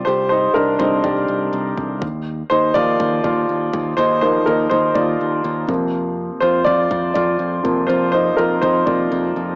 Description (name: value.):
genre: piano-driven pop.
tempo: 123 BPM.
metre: 4/4.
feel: straight.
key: Bb major.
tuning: A4 = 441 Hz.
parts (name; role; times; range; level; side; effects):
clear upright piano; accompaniment; 0.0-9.6 s; C3 to D5; -16 LUFS; equal; cassette tape.
modern bright picked electric bass; bass; 0.0-9.6 s; C2 to F2; -24 LUFS; equal; none.
electronic kick drum; drums; 0.8-9.0 s; none; -29 LUFS; equal; cassette tape.
room: moderate spring reverb, RT60 2.3 s.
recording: home recording on cassette, small speaker sound.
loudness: -15 LUFS.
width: side -33 dB against mid.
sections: 0.0-9.6 A section.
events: upright piano solo 0.0-9.6.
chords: 0.0 Csus2; 2.0 Ebsus2; 5.7 Bbsus2/F.